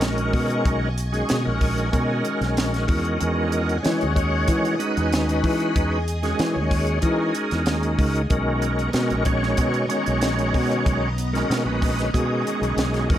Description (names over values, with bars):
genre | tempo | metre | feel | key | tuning
electric jazz fusion | 94 BPM | 4/4 | straight | B major | A4 = 441 Hz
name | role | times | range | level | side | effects
bright tonewheel organ | accompaniment | 0.0-13.2 s | D#3 to C#5 | -23 LUFS | equal | slow rotary speaker, chorus vibrato
string machine, violins | sustained chords | 0.0-13.2 s | B3 to D#6 | -32 LUFS | equal | ensemble chorus
fretless electric bass | bass | 0.0-13.2 s | A#1 to E3 | -24 LUFS | equal | none
crisp fusion drum kit | drums | 0.0-13.2 s | hi-hat, kick drum, snare drum | -25 LUFS | equal | none
room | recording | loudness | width
light reverb | none | -20 LUFS | side -12 dB against mid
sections
0.0-13.2 A section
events
none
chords
0.0 Bmaj9; 2.9 Emaj9; 8.3 Bmaj9